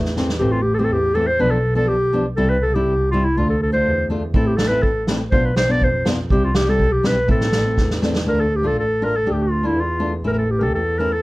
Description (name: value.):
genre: klezmer.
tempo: 122 BPM.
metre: 2/4.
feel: straight.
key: A minor.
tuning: A4 = 440 Hz.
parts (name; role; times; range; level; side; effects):
mellow clarinet; melody; 0.0-11.2 s; A3 to D5; -20 LUFS; equal; none.
warm double bass; bass; 0.0-11.0 s; A1 to F2; -22 LUFS; equal; none.
unplugged drum kit; drums; 0.1-0.4, 4.3-8.3 s; kick drum, snare drum; -21 LUFS; right 1 dB; none.
nylon-string guitar; accompaniment; 0.2-11.1 s; E3 to G4; -23 LUFS; left 1 dB; none.
room: light reverb.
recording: dark, warm production.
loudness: -16 LUFS.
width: side -20 dB against mid.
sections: 0.4-8.3 A section; 8.3-11.2 B section.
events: drum fill 0.0-0.4, 7.8-8.3.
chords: 0.4 Am; 1.4 Bdim; 2.4 C; 3.4 Dm; 4.3 Am; 5.3 Bdim; 6.3 C; 7.3 Am; 8.3 Dm; 10.2 A.